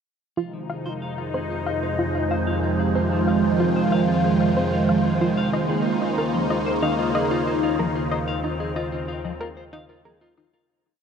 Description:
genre	ambient, sequencer-driven space music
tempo	93 BPM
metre	4/4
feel	straight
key	F minor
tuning	A4 = 440 Hz
part	phased analog pad	sustained chords	0.4-10.7 s	C3 to F4	-22 LUFS	right 1 dB	phaser, chorus
part	clean electric guitar	arpeggios	0.4-10.7 s	F3 to F5	-32 LUFS	left 2 dB	auto-pan, tape echo, shimmer reverb
part	analog pluck	riff	0.4-10.6 s	Eb4 to F5	-30 LUFS	equal	chorus, tape echo, shimmer reverb
part	analog drone	bass	1.3-10.7 s	Eb2 to F2	-30 LUFS	left 1 dB	chorus
part	wind-like tuned noise texture	texture	1.2-10.7 s	C5	-32 LUFS	right 3 dB	built-in reverb, shimmer reverb
room	wet huge ambient reverb, RT60 8.4 s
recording	dark, warm production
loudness	-20 LUFS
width	side -7 dB against mid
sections	0.4-10.7 A section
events	fade-in on clean electric guitar 0.4-10.7; filter sweep on synth arpeggio sound 0.4-10.7; fade-out 7.3-10.7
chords	0.4 Fm7; 5.5 Eb7sus4

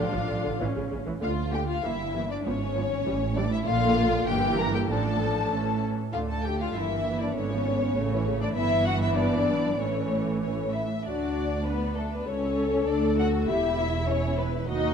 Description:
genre	quick classical-period movement for string orchestra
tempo	98 BPM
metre	2/4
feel	straight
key	D minor, D major from 8.6 s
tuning	A4 = 440 Hz
part	rich studio violin section	melody	0.0-14.9 s	A4 to Bb5	-31 LUFS	left 5 dB	none
part	warm studio violin section	second line	0.0-14.9 s	A3 to Bb4	-31 LUFS	left 3 dB	none
part	dark studio viola section	accompaniment	0.0-14.9 s	C#3 to A4	-30 LUFS	right 1 dB	none
part	rich studio double bass section	bass	0.0-14.9 s	E1 to D#2	-32 LUFS	right 4 dB	none
part	warm studio cello section	bass	0.0-14.9 s	C#2 to F3	-32 LUFS	right 3 dB	none
room	moderate concert hall reverb, RT60 2.4 s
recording	dark, warm production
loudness	-24 LUFS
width	side -7 dB against mid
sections	0.0-1.2 A section; 1.2-11.1 B section; 11.1-14.9 C section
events	none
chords	0.0 Dm/A; 0.6 A; 1.2 Dm; 1.8 Edim/G; 2.5 C#7/G#; 3.1 A7; 3.7 Bb; 4.3 Edim/G; 4.9 Dm/A; 5.5 A; 6.1 D5; 6.7 Edim/G; 7.4 G#dim7; 8.0 A; 8.6 Em/G; 9.8 A; 11.1 D; 12.3 A/C#; 12.9 D; 13.5 Em6

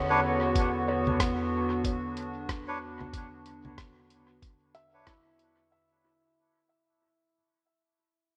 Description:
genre	ambient dub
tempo	93 BPM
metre	4/4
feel	swing 59% on 16ths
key	unclear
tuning	A4 = 439 Hz
part	warbly tape-like pad	sustained chords	0.0-5.7 s	E2 to B4	-33 LUFS	equal	chorus, built-in reverb, vintage 12-bit sampler grit
part	felt-muted upright piano	arpeggios	0.0-7.3 s	E4 to E5	-38 LUFS	equal	delay
part	melodica	stabs	0.1-5.1 s	D4 to C#5	-34 LUFS	equal	dub echo
part	electronic kick drum	drums	0.6-5.2 s	none	-34 LUFS	equal	none
part	lo-fi sampler-style drum kit	drums	0.6-5.5 s	congas, hi-hat, rim click	-40 LUFS	equal	dub echo
room	wet lush hall reverb, RT60 2.8 s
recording	dreamy mix soaked in reverb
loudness	-29 LUFS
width	mono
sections	0.0-5.7 A section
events	fade-out 0.0-5.7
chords	0.0 Bmadd9/E

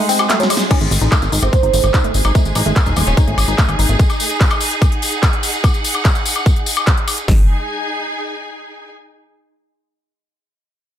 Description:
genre	psychedelic trance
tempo	146 BPM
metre	4/4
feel	straight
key	unclear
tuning	A4 = 440 Hz
part	oud	melody	0.0-3.9 s	D#3 to D#4	-22 LUFS	right 5 dB	phaser, sidechain pumping, diffuse ambient delay
part	evolving wavetable pad	sustained chords	0.0-0.7 s	G#3	-27 LUFS	right 2 dB	phaser, built-in reverb, sidechain pumping
part	woody wave-folded pluck	riff	0.0-4.0, 7.3-7.5 s	F#3 to D#4	-23 LUFS	moving between left 5 dB and right 6 dB	chorus, auto-pan, sidechain pumping, diffuse ambient delay
part	clear symphonic string section	texture	0.0-8.9 s	D#4 to G#5	-23 LUFS	right 2 dB	sidechain pumping
part	big-room dance drum kit	drums	0.1-7.3 s	crash cymbal, handclaps, hi-hat, ride cymbal, snare drum, woodblock	-20 LUFS	left 2 dB	overdrive
part	tambourine	percussion	0.1-7.3 s	none	-25 LUFS	left 4 dB	none
part	vowel-sweep wobble bass	second line	0.2-0.7 s	F#3	-31 LUFS	right 7 dB	none
part	big-room dance drum kit	drums	0.7-7.4 s	hi-hat, kick drum, snare drum	-14 LUFS	equal	overdrive
part	plucky analog bass	bass	0.8-4.0, 7.3-7.5 s	D#1 to A1	-17 LUFS	equal	tube saturation
room	light reverb, digital ambience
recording	none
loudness	-13 LUFS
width	side -10 dB against mid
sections	0.7-7.3 A section; 7.3-8.9 B section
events	break 0.0-0.7; drum fill 0.3-0.7; band accent 0.6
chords	0.0 G#5

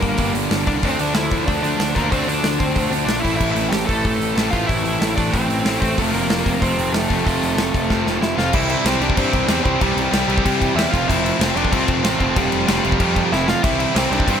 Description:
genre	punk rock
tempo	187 BPM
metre	4/4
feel	straight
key	unclear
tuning	A4 = 440 Hz
part	dark smooth lead guitar	melody	0.0-14.4 s	G3 to A5	-23 LUFS	left 2 dB	overdrive
part	cranked stack guitar	riff	0.0-14.4 s	G2 to F4	-24 LUFS	left 13 dB	overdrive
part	cranked stack guitar	riff	0.0-14.4 s	F2 to D4	-23 LUFS	right 17 dB	overdrive
part	fuzz picked electric bass	bass	0.0-14.4 s	F1 to C3	-24 LUFS	equal	overdrive
part	big rock drum kit	drums	0.0-14.4 s	crash cymbal, hi-hat, kick drum, snare drum, splash cymbal	-22 LUFS	equal	none
room	little or no reverb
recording	none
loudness	-16 LUFS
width	side -8 dB against mid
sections	0.0-8.5 A section; 8.5-14.4 B section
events	drum fill 7.9-8.5, 13.3-13.6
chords	0.0 Gm; 0.8 Dm; 3.2 Am; 6.0 F; 8.5 C; 10.9 F; 13.6 C

